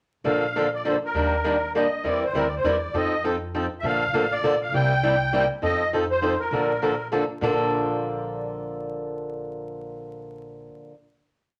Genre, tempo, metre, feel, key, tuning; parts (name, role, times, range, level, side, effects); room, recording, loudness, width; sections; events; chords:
acoustic string swing (jazz manouche); 201 BPM; 3/4; swing 58% on 8ths; Bb major; A4 = 440 Hz
picked swing-style acoustic guitar; accompaniment; 0.2-10.9 s; Bb2 to Bb4; -27 LUFS; equal
upright bass; bass; 0.2-10.7 s; A1 to F2; -34 LUFS; equal
musette accordion; melody; 0.3-7.1 s; Bb4 to G5; -28 LUFS; equal
wet club reverb, RT60 0.8 s; vinyl crackle; -24 LUFS; mono
0.2-7.4 A section; 7.4-9.2 final chord
0.2 Bbmaj7; 1.1 Ebmaj7; 2.0 C9; 2.9 F7; 3.8 Bbmaj7; 4.7 C7; 5.6 F7; 6.5 Bbmaj7